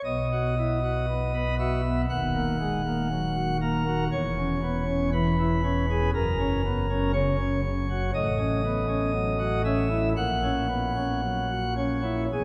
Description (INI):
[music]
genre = classical, chorale-style piece for pipe organ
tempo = 59 BPM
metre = 4/4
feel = rubato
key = B major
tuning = A4 = 440 Hz
[part]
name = pipe organ, sparkling flutes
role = solo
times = 0.0-12.4 s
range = D#1 to F#5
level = -26 LUFS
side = equal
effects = none
[sound]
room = wet church reverb, RT60 3.0 s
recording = heard from further back in the room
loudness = -26 LUFS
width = mono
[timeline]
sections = 0.0-12.4 A section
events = none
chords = 0.0 B; 2.1 D#m; 4.1 C#m/E; 6.1 F#; 8.1 F#m7/A; 10.2 F#7/A#